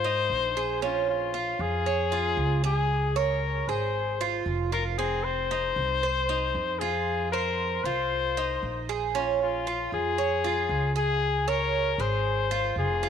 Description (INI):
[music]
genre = latin, Cuban son and guajira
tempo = 116 BPM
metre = 4/4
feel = straight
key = F minor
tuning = A4 = 440 Hz
[part]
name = warm trumpet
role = melody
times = 0.0-13.1 s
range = F4 to C5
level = -28 LUFS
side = left 7 dB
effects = none
[part]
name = Cuban tres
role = arpeggios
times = 0.0-13.1 s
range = C4 to Db5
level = -30 LUFS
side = right 10 dB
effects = none
[part]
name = upright bass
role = bass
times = 0.0-13.1 s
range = F1 to Ab2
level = -31 LUFS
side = equal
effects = none
[sound]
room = moderate plate reverb, RT60 3.7 s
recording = 1960s-style stereo with parts hard left and right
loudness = -24 LUFS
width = side -8 dB against mid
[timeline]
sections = 0.0-13.1 A section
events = none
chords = 0.0 Fm7 (rootless); 0.8 Bbm7; 2.9 Dbmaj7; 5.0 F7(no3); 9.1 Bbm7; 11.2 Dbmaj7